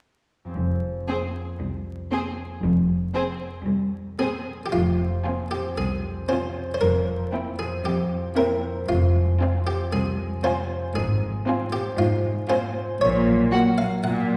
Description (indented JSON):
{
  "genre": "cinematic, playful, whimsical film cue",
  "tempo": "116 BPM",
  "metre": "4/4",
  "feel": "straight",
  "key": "F minor",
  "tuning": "A4 = 440 Hz",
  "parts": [
    { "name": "concert harp", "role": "arpeggios", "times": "0.4-14.4 s", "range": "F2 to C5", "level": "-31 LUFS", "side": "equal", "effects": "none" },
    { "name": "clear studio cello section", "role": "bass", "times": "0.6-14.4 s", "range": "C2 to Bb2", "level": "-29 LUFS", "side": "equal", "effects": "none" },
    { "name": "rich studio double bass section", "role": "bass", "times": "0.6-13.4 s", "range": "F1 to Bb1", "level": "-29 LUFS", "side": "equal", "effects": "none" },
    { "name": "rich studio violin section", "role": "melody", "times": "1.1-13.6 s", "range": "C5 to Ab5", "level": "-37 LUFS", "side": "equal", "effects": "none" },
    { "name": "rich studio violin section", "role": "second line", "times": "1.1-13.6 s", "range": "E4 to Ab4", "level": "-35 LUFS", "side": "equal", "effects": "none" },
    { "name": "dark studio viola section", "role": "accompaniment", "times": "1.1-13.6 s", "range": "Bb3 to C4", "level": "-31 LUFS", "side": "equal", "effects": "none" },
    { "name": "buff-stop harpsichord", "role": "melody", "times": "4.2-14.4 s", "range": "F4 to Gb5", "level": "-29 LUFS", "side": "equal", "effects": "none" }
  ],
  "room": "wet scoring stage reverb, RT60 1.6 s",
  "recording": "heard from further back in the room, vinyl crackle",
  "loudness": "-24 LUFS",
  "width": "mono",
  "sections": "0.6-4.7 A section; 4.7-14.4 B section",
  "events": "none",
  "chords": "0.6 Fm; 6.8 C7/F; 8.9 Fm; 11.0 Fm/Ab; 13.0 Gb/Bb",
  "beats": "| 0.56 1.08 1.60 2.11 | 2.63 3.14 3.66 4.19 | 4.73 5.25 5.78 6.29 | 6.81 7.33 7.85 8.37 | 8.89 9.41 9.93 10.44 | 10.96 11.47 11.99 12.50 | 13.01 13.53 14.04"
}